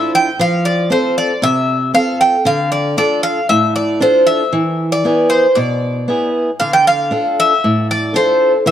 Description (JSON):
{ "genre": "greek folk", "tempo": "116 BPM", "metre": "4/4", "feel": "straight", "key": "unclear", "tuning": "A4 = 436 Hz", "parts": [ { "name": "Greek bouzouki", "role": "melody", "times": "0.0-8.7 s", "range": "C5 to G5", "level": "-14 LUFS", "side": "equal", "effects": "none" }, { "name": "picked old ladder-braced acoustic guitar", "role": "accompaniment", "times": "0.0-8.7 s", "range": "A2 to A4", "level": "-17 LUFS", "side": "right 1 dB", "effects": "none" } ], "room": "moderate plate reverb, RT60 2.6 s", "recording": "dark, warm production", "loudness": "-12 LUFS", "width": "side -10 dB against mid", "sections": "0.0-8.7 A section", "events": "none", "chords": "0.4 F; 2.5 Dm; 4.5 E; 6.6 Dm", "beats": "| 0.38 0.90 1.42 1.93 | 2.45 2.97 3.49 4.00 | 4.52 5.04 5.56 6.08 | 6.59 7.11 7.63 8.15 | 8.67" }